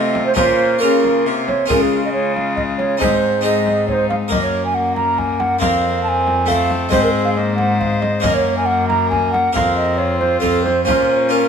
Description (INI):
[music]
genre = classical, renaissance-style consort dance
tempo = 137 BPM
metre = 3/4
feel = straight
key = Bb minor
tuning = A4 = 438 Hz
[part]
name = warm violin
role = melody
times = 0.0-11.5 s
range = Eb4 to C5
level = -27 LUFS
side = left 5 dB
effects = none
[part]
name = mellow hollow tenor recorder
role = second line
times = 0.0-11.5 s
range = Ab4 to Bb5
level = -18 LUFS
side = right 3 dB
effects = none
[part]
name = harpsichord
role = accompaniment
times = 0.0-11.5 s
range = F2 to Db5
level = -21 LUFS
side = left 2 dB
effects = none
[part]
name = warm viola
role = accompaniment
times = 0.0-11.5 s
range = Ab3 to Db4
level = -25 LUFS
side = left 3 dB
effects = none
[part]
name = rich cello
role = bass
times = 0.0-11.5 s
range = F2 to Db3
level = -23 LUFS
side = left 1 dB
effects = none
[part]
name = frame drum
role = percussion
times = 0.2-11.1 s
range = none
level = -26 LUFS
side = left 2 dB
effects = none
[sound]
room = moderate stone room reverb, RT60 1.1 s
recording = minimal, uncompressed stereo recording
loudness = -14 LUFS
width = side -7 dB against mid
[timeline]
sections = 0.0-1.7 A section; 1.7-11.5 B section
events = none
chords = 0.4 Bbm; 1.7 Db; 3.0 Ab; 4.3 Gb; 5.6 Fsus4; 6.5 F; 6.9 Ab; 8.2 Gb; 9.6 Fsus4; 10.4 F; 10.9 Bbm